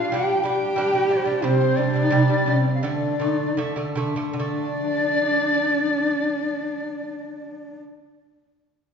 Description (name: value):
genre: mongolian traditional, Mongolian folk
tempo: 73-95 BPM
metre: 4/4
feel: straight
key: unclear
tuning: A4 = 440 Hz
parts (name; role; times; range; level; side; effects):
- dark horsehead fiddle; melody; 0.0-7.8 s; C4 to G4; -25 LUFS; equal; none
- large dizi; second line; 0.0-7.8 s; C5 to G5; -25 LUFS; left 3 dB; none
- lute; arpeggios; 0.0-7.8 s; C3 to D4; -24 LUFS; right 2 dB; none
room: wet recital hall reverb, RT60 1.5 s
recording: heard from further back in the room, nothing above 7.7 kHz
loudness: -20 LUFS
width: side -6 dB against mid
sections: 0.0-4.4 A section; 4.4-7.7 B section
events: slowing down 0.0-4.4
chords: 0.0 G5; 1.4 C5; 2.8 D5